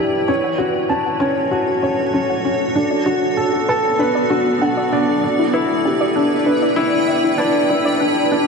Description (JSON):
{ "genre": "piano and strings electronica", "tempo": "97 BPM", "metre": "4/4", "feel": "straight", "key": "E dorian", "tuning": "A4 = 438 Hz", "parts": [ { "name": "granular cloud pad", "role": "sustained chords", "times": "0.0-8.5 s", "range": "B3 to G5", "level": "-21 LUFS", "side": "right 1 dB", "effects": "built-in reverb" }, { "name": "soft round pluck", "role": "arpeggios", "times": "0.0-8.4 s", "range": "C#4 to F#5", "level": "-22 LUFS", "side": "left 1 dB", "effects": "chorus, ping-pong delay" }, { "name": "dark upright piano", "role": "riff", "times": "0.0-8.5 s", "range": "C#4 to A5", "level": "-18 LUFS", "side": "equal", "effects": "ping-pong delay" } ], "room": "wet huge ambient reverb, RT60 7.2 s", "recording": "dark, warm production, high-pass filter", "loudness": "-15 LUFS", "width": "side -4 dB against mid", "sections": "0.0-8.5 A section", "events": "build-up 0.0-8.5; filter sweep on synth arpeggio sound 0.0-8.5; filter sweep 0.0-8.5", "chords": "0.3 F#m; 2.8 Bm7; 5.2 Em7" }